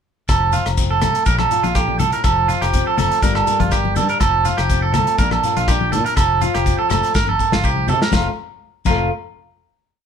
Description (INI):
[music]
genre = highlife guitar band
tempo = 122 BPM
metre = 4/4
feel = straight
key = F major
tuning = A4 = 443 Hz
[part]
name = flamenco guitar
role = accompaniment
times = 0.3-9.1 s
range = Bb2 to Bb4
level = -26 LUFS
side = left 8 dB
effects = none
[part]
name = electric guitar at the edge of break-up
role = arpeggios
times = 0.3-9.1 s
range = F4 to Bb4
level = -18 LUFS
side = right 6 dB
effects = none
[part]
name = fingered electric bass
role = bass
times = 0.3-9.1 s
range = F1 to C3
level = -22 LUFS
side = left 1 dB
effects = none
[part]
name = warm soul drum kit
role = drums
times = 0.3-9.0 s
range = crash cymbal, hi-hat, kick drum, rim click, snare drum, toms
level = -21 LUFS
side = left 1 dB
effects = none
[part]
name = agogo bells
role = percussion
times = 0.3-9.0 s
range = none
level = -30 LUFS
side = left 15 dB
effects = none
[part]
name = shekere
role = percussion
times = 0.3-9.1 s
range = none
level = -29 LUFS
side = left 6 dB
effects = none
[part]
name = congas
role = percussion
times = 1.0-9.1 s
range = none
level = -26 LUFS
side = left 4 dB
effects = none
[sound]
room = light reverb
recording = band playing live in one room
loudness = -15 LUFS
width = side -7 dB against mid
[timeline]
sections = 0.3-8.1 A section; 8.1-10.1 final chord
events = drum fill 7.1-8.1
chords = 0.3 F; 1.3 Bb; 2.2 F; 3.2 Gm7; 4.2 F; 5.2 Bb; 6.2 F; 7.1 Gm7; 7.6 C5; 8.1 F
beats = | 0.29 0.78 1.26 1.75 | 2.24 2.73 3.22 3.71 | 4.20 4.69 5.18 5.67 | 6.16 6.66 7.14 7.63 | 8.12 8.61